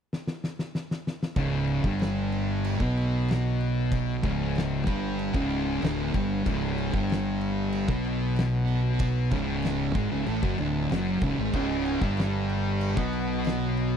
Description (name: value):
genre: stoner and doom metal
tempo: 94 BPM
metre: 4/4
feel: straight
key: unclear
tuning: A4 = 440 Hz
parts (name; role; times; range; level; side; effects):
- oversized low-tuned drum kit; drums; 0.1-13.9 s; crash cymbal, kick drum, snare drum; -32 LUFS; equal; none
- thick fuzz guitar; riff; 1.4-14.0 s; C#2 to B3; -29 LUFS; left 9 dB; distortion
- thick fuzz guitar; riff; 1.4-14.0 s; C#2 to B3; -29 LUFS; right 8 dB; distortion
- fuzz fingered electric bass; bass; 1.4-14.0 s; C#1 to B1; -32 LUFS; equal; overdrive
- biting overdriven guitar; riff; 11.5-14.0 s; C#2 to B3; -32 LUFS; right 1 dB; none
room: small room ambience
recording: dry, close 1970s-style studio recording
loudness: -25 LUFS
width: side -8 dB against mid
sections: 0.0-1.4 A section; 1.4-14.0 B section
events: drum fill 0.1-1.4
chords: 0.0 N.C.; 1.4 C#5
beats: 0.09 0.73 | 1.37 2.00 2.64 3.28 | 3.91 4.55 5.19 5.82 | 6.46 7.09 7.73 8.37 | 9.00 9.64 10.27 10.91 | 11.54 12.18 12.81 13.45